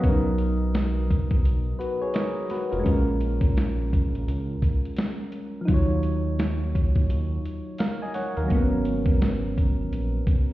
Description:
lo-fi hip hop; 85 BPM; 4/4; swing 61% on 16ths; G# dorian; A4 = 440 Hz
soft electric-piano-like synth keys; accompaniment; 0.0-10.5 s; E#3 to G#5; -28 LUFS; equal; chorus, low-pass filter
round analog bass; bass; 0.0-10.2 s; E#1 to D#2; -26 LUFS; equal
dusty soul sampler-style drum kit; drums; 0.0-10.5 s; hi-hat, kick drum, snare drum; -24 LUFS; equal; vintage 12-bit sampler grit
moderate concert hall reverb, RT60 2.0 s; heard muffled through a wall, stone room reverb, EQ; -22 LUFS; side -16 dB against mid
0.0-10.5 A section
0.0 Bmaj7; 2.9 A#m7; 5.7 D#m9; 8.5 G#m11
| 0.04 0.74 1.45 2.15 | 2.86 3.56 4.27 4.98 | 5.68 6.39 7.09 7.80 | 8.51 9.21 9.92

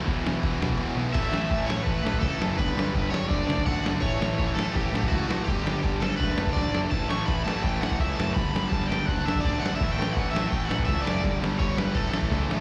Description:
punk rock; 167 BPM; 4/4; straight; A mixolydian; A4 = 440 Hz
distorted electric guitar; riff; 0.0-12.6 s; E2 to D4; -35 LUFS; equal; overdrive, slapback echo
sludgy distorted guitar; riff; 0.0-12.6 s; E2 to D4; -34 LUFS; equal; overdrive
fuzz picked electric bass; bass; 0.1-12.6 s; E1 to C#2; -32 LUFS; equal; overdrive
lo-fi sampler-style drum kit; drums; 0.1-12.6 s; crash cymbal, kick drum, ride cymbal, snare drum; -31 LUFS; equal
crunchy overdriven guitar; melody; 1.1-12.5 s; F#4 to C#6; -34 LUFS; equal; tape echo
digital ambience; live gig heard through the venue's PA, recital hall reverb; -26 LUFS; mono
0.0-1.2 A section; 1.2-12.6 B section
kick and snare drop out 0.8-1.2; drum fill 6.6-6.9, 12.3
0.0 E5; 1.2 A5; 2.6 G; 3.3 D/F#; 4.0 A; 5.5 G5; 6.2 D/F#; 6.9 A5; 8.4 G5; 9.1 D/F#; 9.8 A5; 11.2 G5; 12.0 A
0.08 0.43 0.80 | 1.15 1.51 1.87 2.23 | 2.59 2.95 3.31 3.67 | 4.03 4.39 4.75 5.11 | 5.47 5.83 6.20 6.55 | 6.92 7.28 7.64 8.00 | 8.36 8.72 9.08 9.44 | 9.80 10.16 10.52 10.88 | 11.24 11.60 11.96 12.32

